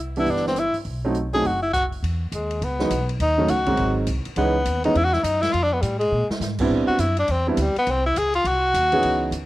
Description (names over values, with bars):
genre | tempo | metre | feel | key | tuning
jazz, small-group swing and bop | 206 BPM | 4/4 | swing 62% on 8ths | unclear | A4 = 441 Hz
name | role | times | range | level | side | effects
upright bass | bass | 0.0-9.5 s | F#1 to A#2 | -26 LUFS | equal | none
bright tenor saxophone | melody | 0.2-9.3 s | E3 to Ab4 | -22 LUFS | left 1 dB | cassette tape
clear concert grand piano | accompaniment | 0.2-9.3 s | D#3 to G#4 | -23 LUFS | right 2 dB | cassette tape
open jazz drum kit | drums | 0.2-9.4 s | crash cymbal, hi-hat, kick drum, ride cymbal, rim click, snare drum | -33 LUFS | equal | none
room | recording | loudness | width
light reverb, small room reverb | home recording on cassette | -19 LUFS | side -16 dB against mid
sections
0.0-2.0 A section; 2.0-9.5 B section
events
drum fill 6.1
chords
0.0 Cmaj9; 0.9 B7b9; 2.0 Emaj7; 3.2 D#m7b5; 3.8 G#7; 4.4 C#m9; 5.5 Fadd9; 6.1 A#7#11; 6.7 Am11; 7.9 G#7 (rootless)